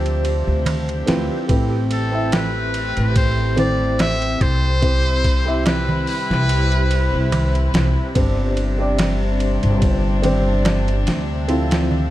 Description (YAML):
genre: trip hop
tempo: 72 BPM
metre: 4/4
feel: swing 55% on 16ths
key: D dorian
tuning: A4 = 439 Hz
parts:
  - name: felt-muted upright piano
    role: accompaniment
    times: 0.0-12.1 s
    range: C4 to E5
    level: -24 LUFS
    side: equal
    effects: harmonic tremolo, tape echo
  - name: rich chamber string section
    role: sustained chords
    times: 0.0-12.1 s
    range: C3 to E4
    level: -27 LUFS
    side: left 3 dB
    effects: none
  - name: upright bass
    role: bass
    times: 0.0-12.1 s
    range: G1 to D2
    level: -20 LUFS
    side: equal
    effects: tube saturation
  - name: backwards swelling texture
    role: texture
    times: 0.0-12.1 s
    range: G4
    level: -34 LUFS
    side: right 5 dB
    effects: built-in reverb
  - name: boom bap sampler-style drum kit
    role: drums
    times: 0.1-11.9 s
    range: hi-hat, kick drum, ride cymbal, snare drum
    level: -23 LUFS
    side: equal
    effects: studio reverb
  - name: darbuka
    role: percussion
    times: 0.7-12.1 s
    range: none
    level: -25 LUFS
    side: right 2 dB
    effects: none
  - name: trumpet with metal mute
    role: melody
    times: 1.9-7.7 s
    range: A4 to E5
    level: -25 LUFS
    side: left 1 dB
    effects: tape echo
room: light reverb, studio reverb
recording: dark, warm production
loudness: -16 LUFS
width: side -14 dB against mid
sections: 0.0-12.1 A section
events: none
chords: 0.0 Dm7; 1.5 Amadd9; 4.8 C; 8.2 Gsus4; 11.5 Dm7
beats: 0.66 | 1.49 2.33 3.16 3.99 | 4.83 5.66 6.49 7.33 | 8.16 8.99 9.83 10.66 | 11.49